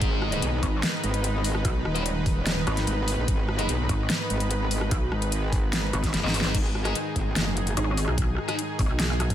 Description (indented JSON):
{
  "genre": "heavy wobble dubstep",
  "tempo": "147 BPM",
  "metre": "4/4",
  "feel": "half-time",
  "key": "G# minor",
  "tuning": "A4 = 440 Hz",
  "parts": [
    { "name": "lush unison pad", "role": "sustained chords", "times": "0.0-9.3 s", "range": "G#2 to B4", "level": "-30 LUFS", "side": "right 1 dB", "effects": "chorus, sidechain pumping" },
    { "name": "thick fuzz guitar", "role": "stabs", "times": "0.0-3.7, 6.2-8.5 s", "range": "D#4 to D#5", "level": "-33 LUFS", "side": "left 3 dB", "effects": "distortion, digital delay" },
    { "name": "metallic wobble bass", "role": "bass", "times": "0.0-9.3 s", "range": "D#1 to B1", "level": "-27 LUFS", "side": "equal", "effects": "chorus, overdrive" },
    { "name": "dubstep drum kit", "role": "drums", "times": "0.0-9.3 s", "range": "crash cymbal, hi-hat, rim click, snare drum", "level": "-29 LUFS", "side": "left 1 dB", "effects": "overdrive, studio reverb" },
    { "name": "electronic kick drum", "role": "drums", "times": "0.0-9.3 s", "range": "none", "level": "-26 LUFS", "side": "equal", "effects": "overdrive, studio reverb" },
    { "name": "pulsing pluck wobble bass", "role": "bass", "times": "0.6-9.3 s", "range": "G#1 to B1", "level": "-27 LUFS", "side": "equal", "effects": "chorus, overdrive" }
  ],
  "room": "digital ambience",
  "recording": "none",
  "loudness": "-23 LUFS",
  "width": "side -11 dB against mid",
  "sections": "0.0-6.5 A section; 6.5-9.3 A section",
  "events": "drop 0.0-6.5, 6.5-9.3; drum fill 6.1-6.5",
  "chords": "0.0 G#5",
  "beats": "| 0.02 0.42 0.83 1.24 | 1.65 2.06 2.46 2.87 | 3.28 3.69 4.10 4.51 | 4.91 5.32 5.73 6.14 | 6.55 6.95 7.36 7.77 | 8.18 8.59 8.99"
}